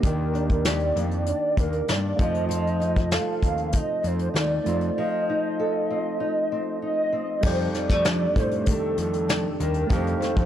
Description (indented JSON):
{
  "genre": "indie pop, bedroom pop",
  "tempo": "97 BPM",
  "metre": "4/4",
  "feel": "straight",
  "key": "unclear",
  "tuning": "A4 = 440 Hz",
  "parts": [
    { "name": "warbly nostalgic lead", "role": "melody", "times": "0.0-10.5 s", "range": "A4 to F5", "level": "-27 LUFS", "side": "right 1 dB", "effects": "ensemble chorus, tape echo" },
    { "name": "nylon-string guitar", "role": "accompaniment", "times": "0.0-10.5 s", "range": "F2 to A4", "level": "-30 LUFS", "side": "left 2 dB", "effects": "lush chorus, warbly pitch drift" },
    { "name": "soft electric-piano-like synth keys", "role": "accompaniment", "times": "0.0-10.5 s", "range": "G3 to F5", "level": "-32 LUFS", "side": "right 6 dB", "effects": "chorus, cassette tape" },
    { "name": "fat analog bass", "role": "bass", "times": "0.0-10.5 s", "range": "Eb2 to A2", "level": "-27 LUFS", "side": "equal", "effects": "tube saturation" },
    { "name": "soft brush drum kit", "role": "drums", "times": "0.0-10.5 s", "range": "crash cymbal, hi-hat, kick drum, snare drum", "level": "-25 LUFS", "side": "equal", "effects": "none" }
  ],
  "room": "small room ambience",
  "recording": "dry, gritty hardware recording",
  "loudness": "-22 LUFS",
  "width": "side -10 dB against mid",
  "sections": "0.0-7.4 A section; 7.4-10.5 B section",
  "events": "none",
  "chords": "0.0 Ebmaj7; 2.2 F7; 7.4 F13"
}